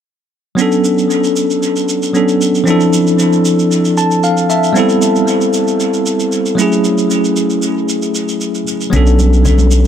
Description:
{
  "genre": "amapiano",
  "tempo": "115 BPM",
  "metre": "4/4",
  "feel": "straight",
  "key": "B minor",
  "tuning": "A4 = 440 Hz",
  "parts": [
    { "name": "bell-like tine electric piano", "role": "accompaniment", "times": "0.6-9.9 s", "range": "F3 to A5", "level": "-11 LUFS", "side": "equal", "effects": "medium stereo tremolo, dub echo" },
    { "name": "shaker", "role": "drums", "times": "0.6-9.9 s", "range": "none", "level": "-23 LUFS", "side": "right 3 dB", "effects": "dub echo" },
    { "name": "round analog bass", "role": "bass", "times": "8.9-9.9 s", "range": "B1", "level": "-9 LUFS", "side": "equal", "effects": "none" },
    { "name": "congas", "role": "percussion", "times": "8.9-9.9 s", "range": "none", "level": "-21 LUFS", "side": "left 4 dB", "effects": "none" }
  ],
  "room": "light reverb",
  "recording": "echo-heavy mix",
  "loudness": "-11 LUFS",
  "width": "side -9 dB against mid",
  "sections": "0.6-9.9 A section",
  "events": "tine electric piano fill 3.7-4.8",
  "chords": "0.6 Bm9; 2.7 Dm9; 4.8 Am9; 6.6 F#m9; 8.9 Bm9"
}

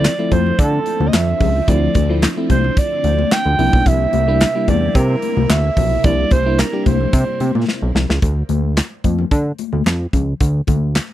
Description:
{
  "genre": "early-eighties boogie funk",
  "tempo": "110 BPM",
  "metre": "4/4",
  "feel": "straight",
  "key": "D minor",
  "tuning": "A4 = 440 Hz",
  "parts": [
    { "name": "breathy alto saxophone", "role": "melody", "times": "0.0-7.7 s", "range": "A4 to G5", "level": "-20 LUFS", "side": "right 4 dB", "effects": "tape echo" },
    { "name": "FM electric piano", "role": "accompaniment", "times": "0.0-7.5 s", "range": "F3 to G4", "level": "-22 LUFS", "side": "left 1 dB", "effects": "chorus" },
    { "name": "phased string machine", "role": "sustained chords", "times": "0.0-8.2 s", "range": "C3 to E4", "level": "-27 LUFS", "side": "right 1 dB", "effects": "ensemble chorus, phaser" },
    { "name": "fat analog bass", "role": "bass", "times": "0.0-11.0 s", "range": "B1 to D3", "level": "-17 LUFS", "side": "equal", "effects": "none" },
    { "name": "modern studio drum kit", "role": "drums", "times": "0.0-11.1 s", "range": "handclaps, hi-hat, kick drum, snare drum", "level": "-17 LUFS", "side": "equal", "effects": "none" },
    { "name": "congas", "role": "percussion", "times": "0.3-10.8 s", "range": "none", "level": "-24 LUFS", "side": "left 14 dB", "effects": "none" }
  ],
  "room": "little or no reverb",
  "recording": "dry, close 1970s-style studio recording",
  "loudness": "-14 LUFS",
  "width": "side -13 dB against mid",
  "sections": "0.0-8.2 A section; 8.2-11.1 B section",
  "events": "drum fill 7.7-8.2",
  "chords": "0.0 Dm7; 3.6 C7; 8.2 Dm"
}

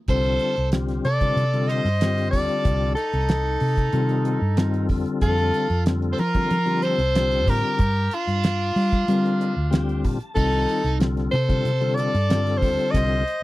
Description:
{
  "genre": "electric jazz fusion",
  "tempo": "93 BPM",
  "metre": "4/4",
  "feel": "straight",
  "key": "C dorian",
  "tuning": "A4 = 440 Hz",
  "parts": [
    { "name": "clear soprano saxophone", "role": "melody", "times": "0.1-13.4 s", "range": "F4 to Eb5", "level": "-24 LUFS", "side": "left 1 dB", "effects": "none" },
    { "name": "overdriven electric guitar", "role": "second line", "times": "0.1-13.4 s", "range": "D4 to C5", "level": "-33 LUFS", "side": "right 8 dB", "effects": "phaser" },
    { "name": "tonewheel organ", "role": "accompaniment", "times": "0.1-13.2 s", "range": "D3 to A5", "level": "-26 LUFS", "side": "left 4 dB", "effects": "chorus vibrato, stopped rotary speaker" },
    { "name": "hollow-body short-scale fingered electric bass", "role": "bass", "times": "0.1-13.2 s", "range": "C2 to G3", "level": "-23 LUFS", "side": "equal", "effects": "none" },
    { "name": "damped 70s drum kit", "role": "drums", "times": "0.1-13.4 s", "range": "hi-hat, kick drum, snare drum", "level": "-22 LUFS", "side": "right 1 dB", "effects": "none" }
  ],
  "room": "small room ambience",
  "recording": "dry, close 1970s-style studio recording",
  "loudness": "-19 LUFS",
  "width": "side -17 dB against mid",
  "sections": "0.1-13.4 A section",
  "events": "tonewheel organ fill 9.1-10.4",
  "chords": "0.1 Cm69; 4.9 F; 7.8 Gm7; 10.4 Cm69"
}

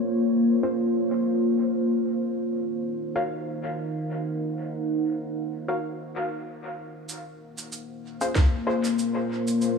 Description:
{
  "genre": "ambient dub",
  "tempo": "95 BPM",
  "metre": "4/4",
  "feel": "swing 55% on 16ths",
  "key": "Bb minor",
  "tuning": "A4 = 441 Hz",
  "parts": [
    { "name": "deep dark ambient pad", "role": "sustained chords", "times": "0.0-9.8 s", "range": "Bb3 to Gb5", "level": "-25 LUFS", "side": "left 1 dB", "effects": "chorus, built-in reverb" },
    { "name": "filtered dub chord stab", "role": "stabs", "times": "0.6-8.8 s", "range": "Db4 to F5", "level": "-31 LUFS", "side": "left 1 dB", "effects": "chorus, dub echo" },
    { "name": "electronic cabasa and snare drum", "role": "drums", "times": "7.1-9.8 s", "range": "none", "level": "-34 LUFS", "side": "right 2 dB", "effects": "low-pass filter on perc, low-pass filter on snare, dub echo" },
    { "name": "electronic kick drum", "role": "drums", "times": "8.4-8.5 s", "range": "none", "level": "-19 LUFS", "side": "equal", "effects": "none" }
  ],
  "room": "moderate echo chamber reverb, RT60 2.6 s",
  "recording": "small room ambience",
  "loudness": "-24 LUFS",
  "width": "side -5 dB against mid",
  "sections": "0.0-7.1 A section; 7.1-9.8 B section",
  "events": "filter sweep on synth stab 0.0-7.1; break 5.8-7.1",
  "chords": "0.0 Bbmadd9; 2.0 Ebm9; 7.1 Bbm9"
}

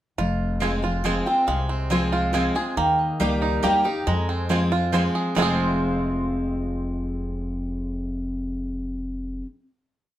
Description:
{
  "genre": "bluegrass",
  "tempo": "139 BPM",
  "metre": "3/4",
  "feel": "straight",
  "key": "F minor",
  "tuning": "A4 = 442 Hz",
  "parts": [
    { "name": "picked steel-string acoustic guitar", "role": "accompaniment", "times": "0.2-9.5 s", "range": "F2 to G4", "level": "-25 LUFS", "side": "left 1 dB", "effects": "none" },
    { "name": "bluegrass banjo", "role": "arpeggios", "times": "0.2-9.4 s", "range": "Ab3 to Ab4", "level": "-28 LUFS", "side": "right 5 dB", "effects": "none" },
    { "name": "upright bass", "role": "bass", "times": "0.2-9.4 s", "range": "F1 to F2", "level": "-29 LUFS", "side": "equal", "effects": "none" },
    { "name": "mandolin", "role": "stabs", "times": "0.6-9.5 s", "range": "Bb3 to Ab5", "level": "-30 LUFS", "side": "right 3 dB", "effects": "none" },
    { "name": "mandolin", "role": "melody", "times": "1.0-9.4 s", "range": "Eb5 to Bb5", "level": "-25 LUFS", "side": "equal", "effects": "none" }
  ],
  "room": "moderate studio reverb, RT60 0.7 s",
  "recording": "none",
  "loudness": "-21 LUFS",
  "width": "side -13 dB against mid",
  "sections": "0.2-5.4 A section; 5.4-7.9 final chord",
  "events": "none",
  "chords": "0.2 Fm; 2.8 Eb; 4.1 Fm"
}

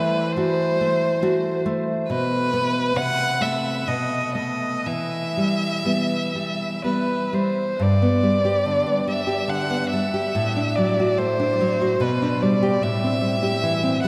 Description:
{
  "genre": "romantic duo for violin and classical guitar",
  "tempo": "60-76 BPM",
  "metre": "3/4",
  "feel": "rubato",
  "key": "E minor, G major from 7.8 s",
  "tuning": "A4 = 440 Hz",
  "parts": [
    { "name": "rich violin", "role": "melody", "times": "0.0-14.1 s", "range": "B4 to F#5", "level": "-26 LUFS", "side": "equal", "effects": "none" },
    { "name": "nylon-string guitar", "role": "accompaniment", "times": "0.0-14.1 s", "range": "G2 to G4", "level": "-24 LUFS", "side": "equal", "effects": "none" }
  ],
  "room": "wet cathedral reverb, RT60 6.3 s",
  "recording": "in a vast, echoing space",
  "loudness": "-22 LUFS",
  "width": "mono",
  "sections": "0.0-7.8 A section; 7.8-14.1 B section",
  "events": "none",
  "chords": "0.0 F#dim/E; 2.1 N.C.; 3.0 Am/C; 3.9 B7; 4.9 Em; 7.8 G; 10.3 D7/A; 12.0 G/B; 12.8 Am7"
}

